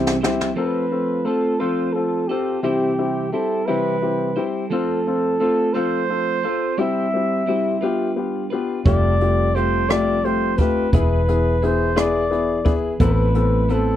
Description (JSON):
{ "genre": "six-eight pop ballad", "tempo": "58 BPM (dotted quarters)", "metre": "6/8", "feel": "straight", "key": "unclear", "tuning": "A4 = 439 Hz", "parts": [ { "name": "mellow flugelhorn", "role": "melody", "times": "0.0-14.0 s", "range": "G4 to E5", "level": "-22 LUFS", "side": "equal", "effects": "none" }, { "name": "warm upright piano", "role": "accompaniment", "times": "0.0-14.0 s", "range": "G3 to A4", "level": "-22 LUFS", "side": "left 5 dB", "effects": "none" }, { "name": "twelve-string electric guitar", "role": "arpeggios", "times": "0.0-14.0 s", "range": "A2 to C5", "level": "-26 LUFS", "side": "right 6 dB", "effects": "none" }, { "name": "vintage muted fingered electric bass", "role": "bass", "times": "0.0-0.5, 8.9-14.0 s", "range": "E1 to C2", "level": "-21 LUFS", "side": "right 1 dB", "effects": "none" }, { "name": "jazz brush drum kit", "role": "drums", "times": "0.1-0.6, 8.9-13.9 s", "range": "hi-hat, kick drum, rim click, snare drum", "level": "-21 LUFS", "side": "right 1 dB", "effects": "none" } ], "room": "light reverb", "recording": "none", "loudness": "-18 LUFS", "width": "side -11 dB against mid", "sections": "0.6-14.0 A section", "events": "drum fill 0.0-0.6", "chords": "0.0 C; 0.6 F; 2.6 C; 4.7 F; 6.8 C/G; 7.8 G7; 8.9 Fadd9; 10.9 E; 13.0 Amadd9" }